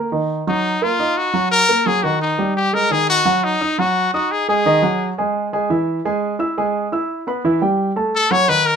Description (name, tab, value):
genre	jazz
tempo	172 BPM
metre	4/4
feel	straight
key	unclear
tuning	A4 = 438 Hz
part	warm grand piano	accompaniment	0.0-8.8 s	Eb3 to E6	-18 LUFS	right 2 dB	none
part	brilliant trumpet	melody	0.5-5.1, 8.1-8.8 s	Eb4 to C#5	-16 LUFS	left 3 dB	none
room	moderate studio reverb, RT60 0.6 s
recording	minimal, uncompressed stereo recording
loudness	-16 LUFS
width	side -7 dB against mid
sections	0.0-2.9 A section; 2.9-8.8 B section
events	none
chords	0.1 Ebm; 2.2 Eb; 2.9 D#m; 4.3 G#5; 5.7 E; 7.1 Em; 7.8 F#m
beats	| 0.12 0.47 0.81 1.16 | 1.51 1.86 2.21 2.56 | 2.91 3.26 3.61 3.96 | 4.30 4.65 5.00 5.35 | 5.70 6.05 6.39 6.74 | 7.09 7.44 7.79 8.14 | 8.48